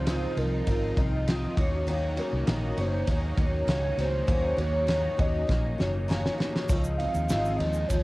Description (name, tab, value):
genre	indie pop, bedroom pop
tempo	100 BPM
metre	4/4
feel	straight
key	unclear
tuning	A4 = 439 Hz
part	warbly nostalgic lead	melody	0.0-8.0 s	Bb4 to F5	-31 LUFS	right 1 dB	phaser, lush chorus, cassette tape
part	picked steel-string acoustic guitar	accompaniment	0.0-8.0 s	Db3 to Gb4	-32 LUFS	left 1 dB	ensemble chorus, vibrato effect, cassette tape
part	lush unison pad	sustained chords	0.0-8.0 s	Eb3 to F4	-38 LUFS	equal	chorus, cassette tape
part	vintage muted fingered electric bass	bass	0.0-8.0 s	Gb1 to Eb2	-29 LUFS	equal	none
part	loose indie drum kit	drums	0.1-8.0 s	kick drum, ride cymbal, snare drum, splash cymbal	-29 LUFS	equal	cassette tape
part	egg shaker	percussion	6.7-8.0 s	none	-45 LUFS	right 3 dB	none
room	light reverb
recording	home recording on cassette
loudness	-24 LUFS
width	side -20 dB against mid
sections	0.0-8.0 A section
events	drum fill 5.5-6.7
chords	0.0 Dbmaj9; 1.6 Ebm7; 6.7 Dbmaj9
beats	0.07 0.67 1.27 | 1.88 2.48 3.08 3.68 | 4.29 4.89 5.49 6.09 | 6.70 7.30 7.90